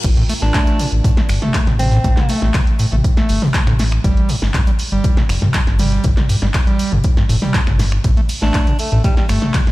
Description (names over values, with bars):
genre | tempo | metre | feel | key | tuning
acid house | 120 BPM | 4/4 | straight | unclear | A4 = 440 Hz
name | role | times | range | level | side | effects
round analog bass | bass | 0.0-9.7 s | F1 to A1 | -17 LUFS | equal | tube saturation, sidechain pumping
deep reggae drum kit | drums | 0.0-9.7 s | hi-hat, snare drum | -36 LUFS | left 3 dB | sidechain pumping on hats, high-pass filter on hats, high-pass filter on snare, high-pass filter on room
electronic kick drum | drums | 0.0-9.6 s | none | -16 LUFS | equal | overdrive
punchy analog drum machine | drums | 0.0-9.7 s | crash cymbal, finger snaps, handclaps, hi-hat, ride cymbal, snare drum, toms | -22 LUFS | equal | low-pass filter on hats, low-pass filter on cymbals, low-pass filter on snare, low-pass filter on toms
overdriven acid bass | riff | 0.2-9.6 s | G1 to A3 | -20 LUFS | equal | distortion, sidechain pumping, ping-pong delay
bright alto saxophone | melody | 0.4-2.5, 8.4-9.2 s | G3 to D4 | -24 LUFS | right 1 dB | digital delay
room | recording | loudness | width
studio ambience | played on a big sound system in a bare room, stone room reverb | -13 LUFS | side -18 dB against mid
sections
0.0-9.7 A section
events
drop 0.0-9.7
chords
0.0 N.C.; 8.0 Gsus2 (rootless)